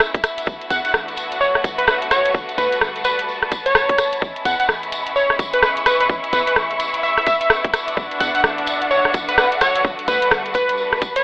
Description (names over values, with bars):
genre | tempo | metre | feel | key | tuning
UK garage, two-step garage | 128 BPM | 4/4 | swing 61% on 16ths | unclear | A4 = 442 Hz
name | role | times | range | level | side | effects
rich studio violin section | sustained chords | 0.0-11.2 s | G#3 to F#4 | -26 LUFS | equal | sidechain pumping
garage drum kit | drums | 0.0-11.2 s | hi-hat, rim click | -18 LUFS | equal | none
tambourine | percussion | 0.0-11.2 s | none | -30 LUFS | left 1 dB | none
muted studio string section | texture | 0.0-11.2 s | G3 to C#6 | -24 LUFS | equal | sidechain pumping
electronic kick drum | drums | 0.1-11.1 s | none | -22 LUFS | equal | none
short 808-style bass | bass | 0.5-11.0 s | G1 to E2 | -32 LUFS | equal | none
plucky unison lead | melody | 0.7-11.2 s | B4 to F#5 | -19 LUFS | equal | tape echo
room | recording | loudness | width
wet studio reverb, RT60 0.6 s | telephone sound | -16 LUFS | side -22 dB against mid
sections
0.0-11.2 A section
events
fade-in on string section 0.0-11.2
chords
0.2 D6/A; 2.3 Gmaj7; 4.2 Amaj9; 7.7 D6/A; 9.8 Gmaj7